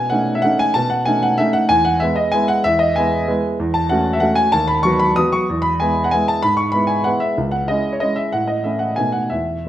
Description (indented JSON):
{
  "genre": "classical, piano waltz",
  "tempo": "189 BPM",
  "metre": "3/4",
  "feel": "uneven beats, rubato",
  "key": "E major",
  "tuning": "A4 = 440 Hz",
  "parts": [
    { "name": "warm baby grand piano", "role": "solo", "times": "0.0-9.7 s", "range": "C#2 to D#6", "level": "-15 LUFS", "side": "equal", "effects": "none" }
  ],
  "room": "wet recital hall reverb, RT60 1.4 s",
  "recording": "none",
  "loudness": "-15 LUFS",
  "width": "side -12 dB against mid",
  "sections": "0.0-9.7 A section",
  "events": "none",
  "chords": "0.0 B9; 1.7 E; 3.6 F#m7/E; 4.5 B/D#; 5.5 E; 6.4 E/G#; 7.4 C#m; 8.3 A6; 9.0 B7"
}